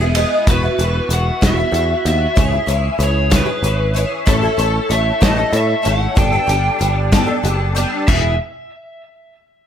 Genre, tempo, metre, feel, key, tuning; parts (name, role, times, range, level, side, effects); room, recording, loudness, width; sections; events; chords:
folk rock and heartland rock; 63 BPM (dotted quarters); 6/8; straight; A4 = 441 Hz
picked twelve-string acoustic guitar; accompaniment; 0.0-8.3 s; A2 to A4; -20 LUFS; left 1 dB; ensemble chorus
picked electric bass; bass; 0.0-8.4 s; E1 to A2; -18 LUFS; equal
natural country drum kit; drums; 0.1-8.2 s; crash cymbal, hi-hat, kick drum, ride cymbal, snare drum; -18 LUFS; equal
lead guitar through a small cranked amp; melody; 0.5-8.4 s; A4 to G5; -21 LUFS; equal; overdrive, tape echo
light reverb; -14 LUFS; side -9 dB against mid
0.5-8.1 A section; 8.1-9.7 B section
0.5 Esus2; 2.4 C#m; 4.3 A; 6.2 Gadd9; 8.1 E